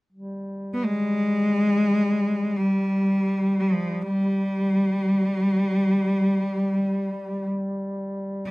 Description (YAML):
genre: caucasian folk, Caucasian lament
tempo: free time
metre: none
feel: none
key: unclear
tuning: A4 = 440 Hz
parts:
  - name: dark duduk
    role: drone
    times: 0.1-8.5 s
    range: G3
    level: -30 LUFS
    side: equal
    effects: stereo widening
  - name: rich cello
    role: melody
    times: 0.7-8.5 s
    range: F3 to B3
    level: -21 LUFS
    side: equal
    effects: none
room: moderate studio reverb, RT60 0.6 s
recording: rough home demo mix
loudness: -21 LUFS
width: side -22 dB against mid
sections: 0.1-8.5 A section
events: none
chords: none